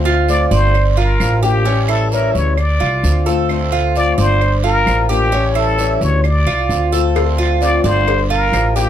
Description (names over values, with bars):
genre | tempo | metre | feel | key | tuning
latin, Cuban son and guajira | 131 BPM | 4/4 | straight | D minor | A4 = 440 Hz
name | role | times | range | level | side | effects
picked old ladder-braced acoustic guitar | accompaniment | 0.0-8.9 s | D3 to G4 | -20 LUFS | left 6 dB | none
upright bass | bass | 0.0-8.9 s | G1 to D2 | -16 LUFS | equal | none
Cuban tres | arpeggios | 0.1-8.9 s | C#4 to D5 | -20 LUFS | right 6 dB | none
trumpet with plunger mute | melody | 0.3-8.9 s | G4 to D5 | -19 LUFS | left 3 dB | none
guiro | percussion | 0.3-8.9 s | none | -32 LUFS | right 6 dB | none
claves | percussion | 0.8-8.8 s | none | -29 LUFS | right 7 dB | none
cowbell | percussion | 7.2-8.9 s | none | -23 LUFS | left 8 dB | none
room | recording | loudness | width
light reverb | dark, warm production | -12 LUFS | side -10 dB against mid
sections
0.0-8.9 A section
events
none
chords
0.0 Dm7; 0.7 Gm7; 1.7 A7; 2.6 Dm7; 4.4 Gm7; 5.3 A7; 6.2 Dm7; 8.1 Gm7